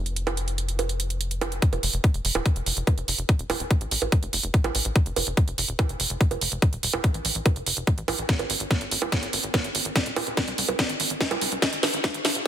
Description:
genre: psychedelic trance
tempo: 144 BPM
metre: 4/4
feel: straight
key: unclear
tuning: A4 = 442 Hz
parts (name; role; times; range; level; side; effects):
- tight sequencer bass; bass; 0.0-12.4 s; Eb1 to C2; -31 LUFS; left 1 dB; none
- drum and bass drum kit; drums; 0.1-12.4 s; bongos, hi-hat, snare drum; -25 LUFS; right 2 dB; overdrive
- electronic kick drum; drums; 1.6-12.1 s; none; -20 LUFS; left 1 dB; overdrive
room: light reverb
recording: dense, heavily limited modern master, high-pass filter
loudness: -22 LUFS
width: side -10 dB against mid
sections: 0.0-1.6 A section; 1.6-12.5 B section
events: build-up 1.6-12.5; filter sweep 1.6-12.5; drum fill 8.3-12.5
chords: none

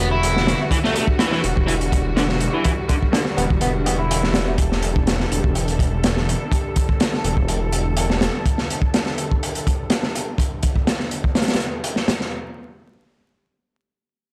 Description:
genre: breakbeat, breaks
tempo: 124 BPM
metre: 4/4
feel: straight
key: E minor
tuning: A4 = 441 Hz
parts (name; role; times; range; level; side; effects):
- clear studio string section; sustained chords; 0.0-12.3 s; D3 to A4; -29 LUFS; equal; sidechain pumping, low-pass filter
- biting overdriven guitar; riff; 0.0-4.5 s; D3 to E4; -26 LUFS; equal; tube saturation, low-pass filter, analog delay
- phased detuned saw bass; bass; 0.0-8.3 s; E1; -25 LUFS; equal; phaser
- crunchy breakbeat drum kit; drums; 0.2-12.3 s; hi-hat, kick drum, snare drum; -22 LUFS; equal; none
room: little or no reverb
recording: dry, gritty hardware recording, vinyl crackle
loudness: -20 LUFS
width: mono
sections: 0.0-12.3 A section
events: filter sweep on overdriven electric guitar 0.0-4.6; filter sweep on string section 0.0-12.3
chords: 0.0 Em9

